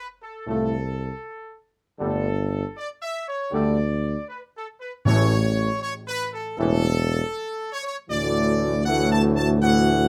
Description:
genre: classical.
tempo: 79 BPM.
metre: 4/4.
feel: straight.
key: A major.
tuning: A4 = 441 Hz.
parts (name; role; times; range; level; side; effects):
clear trumpet section; melody; 0.0-10.1 s; A4 to A5; -30 LUFS; equal; none.
mellow French horn section; sustained chords; 0.5-10.1 s; A3 to A4; -29 LUFS; equal; none.
mellow trombone section; sustained chords; 0.5-10.1 s; A2 to A3; -28 LUFS; equal; none.
mellow tuba; bass; 0.5-10.1 s; E1 to D2; -25 LUFS; equal; none.
timpani; percussion; 5.1-6.2 s; A2; -27 LUFS; equal; none.
room: moderate studio reverb, RT60 0.6 s.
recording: close, detailed microphones.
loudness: -24 LUFS.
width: mono.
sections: 0.0-10.1 A section.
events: none.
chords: 0.0 F; 2.0 Gsus2; 5.1 A; 8.1 Dadd9.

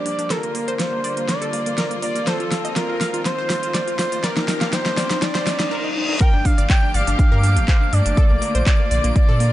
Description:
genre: progressive house.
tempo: 122 BPM.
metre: 4/4.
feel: straight.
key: G minor.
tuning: A4 = 440 Hz.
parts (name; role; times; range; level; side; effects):
expressive portamento lead; melody; 0.0-9.5 s; A4 to G5; -24 LUFS; equal; chorus, sidechain pumping, dub echo.
clear studio string section; sustained chords; 0.0-9.5 s; D3 to G4; -30 LUFS; left 2 dB; sidechain pumping.
riser and reverse cymbal; sound effects; 1.9-6.2 s; none; -31 LUFS; left 1 dB; none.
wide unison pluck; arpeggios; 0.1-9.5 s; Bb3 to F5; -27 LUFS; equal; sidechain pumping, tape echo.
saturated sub bass; bass; 0.1-9.5 s; G1 to Bb2; -18 LUFS; equal; tube saturation, sidechain pumping, high-pass filter.
pop drum kit; drums; 0.1-9.5 s; handclaps, hi-hat, snare drum; -25 LUFS; equal; sidechain pumping on hats.
electronic kick drum; drums; 6.2-9.3 s; none; -16 LUFS; equal; none.
twinkling granular texture; texture; 6.5-9.5 s; D6; -32 LUFS; equal; built-in reverb, sidechain pumping.
room: light reverb, digital ambience.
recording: nothing above 10.7 kHz.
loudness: -17 LUFS.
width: side -14 dB against mid.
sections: 0.0-6.2 A section; 6.2-9.5 B section.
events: build-up 0.0-6.2; drum fill 0.0-5.7; reverse cymbal 5.2-6.2; drop 6.2-9.5.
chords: 0.3 Bb; 2.3 F7sus4; 4.2 Ebmaj7; 6.2 Gm9; 8.2 Bbmaj7.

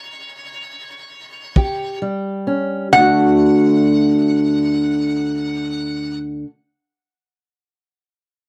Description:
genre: acoustic country blues, solo or duo.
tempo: free time.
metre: none.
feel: none.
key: D major.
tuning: A4 = 440 Hz.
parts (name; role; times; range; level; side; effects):
lap resonator guitar; melody; 0.0-6.2 s; C#5 to F#5; -23 LUFS; equal; none.
fingerpicked steel-string acoustic guitar; accompaniment; 1.6-6.5 s; D2 to G4; -18 LUFS; equal; none.
kick drum; drums; 1.6-1.8 s; none; -16 LUFS; equal; none.
room: little or no reverb.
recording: dry, close 1970s-style studio recording.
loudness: -17 LUFS.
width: mono.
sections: 0.0-2.9 A section; 2.9-8.5 B section.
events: slowing down 0.0-2.9; stop 0.0-1.6.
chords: 0.0 N.C.; 1.6 Eb7; 2.9 D.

